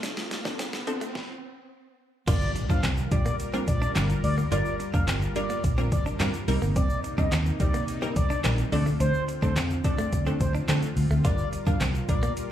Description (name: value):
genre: dance-pop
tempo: 107 BPM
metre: 4/4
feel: straight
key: G minor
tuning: A4 = 440 Hz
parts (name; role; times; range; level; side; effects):
- wavetable chord stab; accompaniment; 0.0-12.3 s; F3 to C5; -32 LUFS; equal; sidechain pumping, slapback echo
- soft supersaw; sustained chords; 0.0-12.5 s; D2 to Bb4; -35 LUFS; equal; sidechain pumping
- direct-recorded clean electric guitar; riff; 0.0-12.3 s; A3 to F4; -36 LUFS; right 3 dB; lush chorus, slapback echo
- smooth R&B drum kit; drums; 0.0-12.5 s; crash cymbal, handclaps, hi-hat, kick drum, snare drum; -28 LUFS; equal; overdrive
- egg shaker; percussion; 0.0-12.5 s; none; -48 LUFS; left 6 dB; none
- riser and impact; sound effects; 0.0-4.5 s; none; -36 LUFS; equal; none
- expressive synth lead; melody; 2.3-12.3 s; C5 to F5; -33 LUFS; left 1 dB; chorus, sidechain pumping, slapback echo, ping-pong delay
- vintage muted fingered electric bass; bass; 2.3-12.3 s; F1 to D3; -26 LUFS; equal; sidechain pumping
room: light reverb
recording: live gig heard through the venue's PA, club reverb, high-pass filter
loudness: -23 LUFS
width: side -11 dB against mid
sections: 0.0-2.3 A section; 2.3-12.5 B section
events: build-up 0.0-2.3; drum fill 0.0-1.2; riser 0.0-2.3; stop 1.2-2.3; drop 2.3-12.5; impact 2.3-4.5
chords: 0.0 Dm7; 2.3 Gm7; 6.5 Cm7; 8.7 Dm7; 11.2 Gm7